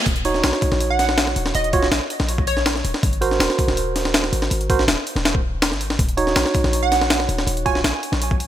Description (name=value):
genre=drum and bass, jungle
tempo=162 BPM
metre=4/4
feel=straight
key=Eb dorian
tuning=A4 = 438 Hz
part: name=warm 808-style bass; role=bass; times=0.1-8.5 s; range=Eb1 to Bb1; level=-24 LUFS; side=left 1 dB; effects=none
part: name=breakbeat sampler-style drum kit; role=drums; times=0.1-8.5 s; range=hi-hat, kick drum, snare drum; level=-20 LUFS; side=left 1 dB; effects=none
part: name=bright tine electric piano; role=stabs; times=0.3-7.8 s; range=Eb4 to Db5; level=-23 LUFS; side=right 4 dB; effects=dub echo
part: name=glassy wavetable pluck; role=melody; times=0.9-3.0, 6.8-8.0 s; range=Db5 to Ab5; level=-24 LUFS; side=right 3 dB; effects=chorus, dub echo
room=light reverb, digital ambience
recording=none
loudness=-17 LUFS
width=side -11 dB against mid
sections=0.0-8.5 A section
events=none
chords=0.1 Ebm7; 3.0 Ab7; 6.0 Ebm7